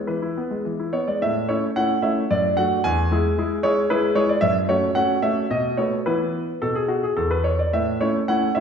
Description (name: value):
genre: classical-period piano sonatina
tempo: 102-116 BPM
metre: 3/4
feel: rubato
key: A major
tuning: A4 = 442 Hz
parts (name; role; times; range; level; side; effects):
- clear grand piano; solo; 0.0-8.6 s; E2 to G#5; -19 LUFS; equal; none
room: wet recital hall reverb, RT60 1.3 s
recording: heard from further back in the room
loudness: -19 LUFS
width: side -7 dB against mid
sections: 0.0-1.2 A section; 1.2-8.6 B section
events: none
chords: 0.0 E; 1.2 A; 2.3 D/F#; 2.8 E; 4.4 F#m; 5.5 B7; 6.0 E5; 7.7 A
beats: 0.07 0.64 | 1.22 1.76 2.30 | 2.84 3.37 3.89 | 4.41 4.95 5.49 | 6.05 6.61 7.17 | 7.73 8.28